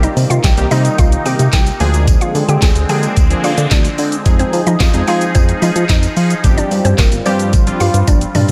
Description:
dance-pop; 110 BPM; 4/4; straight; C minor; A4 = 440 Hz
mallet-like synth pluck; melody; 0.0-8.5 s; Bb3 to Ab5; -23 LUFS; equal; chorus, sidechain pumping
warm analog keys; accompaniment; 0.0-8.3 s; Eb3 to Ab4; -23 LUFS; equal; chorus, sidechain pumping
sweeping resonant pad; sustained chords; 0.0-8.5 s; C3 to Ab4; -25 LUFS; equal; chorus, sidechain pumping
chorused synth bass; bass; 0.0-8.5 s; G1 to F3; -17 LUFS; equal; sidechain pumping
pop drum kit; drums; 0.0-8.5 s; handclaps, hi-hat, kick drum, shaker, snare drum, toms; -16 LUFS; equal
tambourine; percussion; 0.2-8.5 s; -35 LUFS; equal
light reverb; -13 LUFS; mono
0.0-8.5 A section
drum fill 8.1-8.5
0.0 Cm7; 1.8 Bb7/D; 4.3 Fm7; 6.4 G7sus4
0.44 0.98 1.53 | 2.08 2.62 3.17 3.71 | 4.26 4.80 5.35 5.89 | 6.44 6.98 7.53 8.07

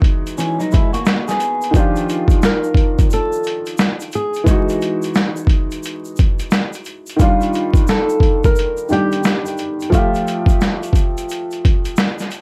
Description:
lo-fi hip hop; 88 BPM; 4/4; swing 64% on 16ths; A4 = 440 Hz
felt-muted upright piano; accompaniment; 0.0-12.4 s; Eb3 to E5; -24 LUFS; equal; cassette tape, plate reverb
boom bap sampler-style drum kit; drums; 0.0-12.4 s; hi-hat, kick drum, snare drum; -18 LUFS; equal; overdrive, vintage 12-bit sampler grit
tube shaker; percussion; 0.3-12.4 s; -40 LUFS; equal
electric guitar at the edge of break-up; second line; 0.4-1.7 s; E3 to G#4; -23 LUFS; equal; lush chorus, analog delay
flamenco guitar; melody; 1.8-11.9 s; F4 to Bb4; -23 LUFS; equal
light reverb; vinyl crackle; -17 LUFS; mono
0.0-12.4 A section
0.0 Emaj9; 1.7 Ebmaj9; 4.5 Emaj9; 7.2 Ebmaj9; 9.9 Fmaj9
0.38 1.06 | 1.74 2.42 3.11 3.79 | 4.47 5.15 5.83 6.51 | 7.20 7.88 8.56 9.24 | 9.92 10.61 11.29 11.97

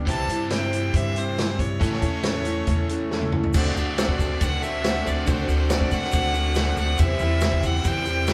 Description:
folk rock and heartland rock; 139 BPM; 4/4; straight; D mixolydian; A4 = 443 Hz
picked steel-string acoustic guitar; accompaniment; 0.0-8.3 s; A2 to A4; -33 LUFS; equal
reed electric piano; accompaniment; 0.0-8.3 s; D4 to C#5; -36 LUFS; equal
overdriven electric guitar; riff; 0.0-8.3 s; A2 to A4; -34 LUFS; equal
upright bass; bass; 0.0-8.3 s; A1 to G2; -28 LUFS; equal
bright fiddle; melody; 0.1-8.3 s; C5 to A5; -31 LUFS; equal
tonewheel organ; sustained chords; 0.1-8.3 s; F#4 to D6; -42 LUFS; equal
vintage drum kit; drums; 0.1-8.3 s; crash cymbal, hi-hat, kick drum, ride cymbal, snare drum, toms; -28 LUFS; equal
egg shaker; percussion; 3.5-8.3 s; -46 LUFS; equal
moderate studio reverb, RT60 0.5 s; band playing live in one room; -23 LUFS; mono
0.0-3.5 A section; 3.5-8.3 B section
drum fill 3.1-3.5
0.1 C; 1.8 A; 3.5 D7; 7.0 C/E
| 0.08 0.51 0.95 1.38 | 1.81 2.25 2.68 3.11 | 3.55 3.98 4.41 4.84 | 5.27 5.71 6.14 6.57 | 7.00 7.43 7.86 8.29

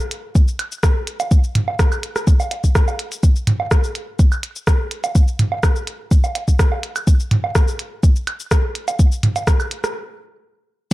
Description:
techno; 125 BPM; 4/4; straight
minimal click drum kit; drums; 0.0-9.9 s; cabasa, hi-hat, rim click; -24 LUFS; equal
electronic kick drum; drums; 0.4-9.6 s; -14 LUFS; equal
electronic woodblock and toms; percussion; 0.6-9.7 s; -21 LUFS; right 2 dB; overdrive
little or no reverb; dark, warm production; -16 LUFS; side -18 dB against mid
0.0-10.9 A section
stop 10.0-10.9
0.35 0.83 | 1.31 1.79 2.27 2.75 | 3.23 3.71 4.19 4.67 | 5.15 5.63 6.11 6.59 | 7.07 7.55 8.03 8.51 | 8.99 9.47

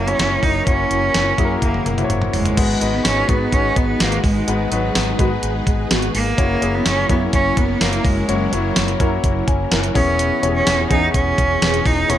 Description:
1980s-style pop; 126 BPM; 4/4; straight; G# minor; A4 = 440 Hz
clear cello; melody; 0.0-12.2 s; F#3 to D#4; -20 LUFS; right 2 dB; tape echo
clear concert grand piano; accompaniment; 0.0-12.2 s; G#2 to G#5; -23 LUFS; left 4 dB
string machine, violas; sustained chords; 0.0-12.2 s; B2 to B4; -27 LUFS; equal; ensemble chorus
mellow fretless electric bass; bass; 0.0-12.2 s; E1 to G#2; -23 LUFS; equal
clean 12-bit digital drum machine; drums; 0.1-12.2 s; crash cymbal, hi-hat, kick drum, snare drum, tambourine, toms; -20 LUFS; equal; gated reverb
mellow synth brass; stabs; 3.3-11.8 s; C#3 to A#4; -27 LUFS; equal; chorus, phaser, tape echo
light reverb, digital ambience; -15 LUFS; side -11 dB against mid
0.0-2.6 A section; 2.6-12.2 B section
drum fill 1.6-2.6
0.0 F#7; 2.6 G#m7; 6.4 F#7; 10.0 E6
0.19 | 0.67 1.14 1.62 2.10 | 2.57 3.05 3.52 4.00 | 4.48 4.95 5.43 5.91 | 6.38 6.86 7.33 7.81 | 8.29 8.76 9.24 9.72 | 10.19 10.67 11.14 11.62 | 12.10

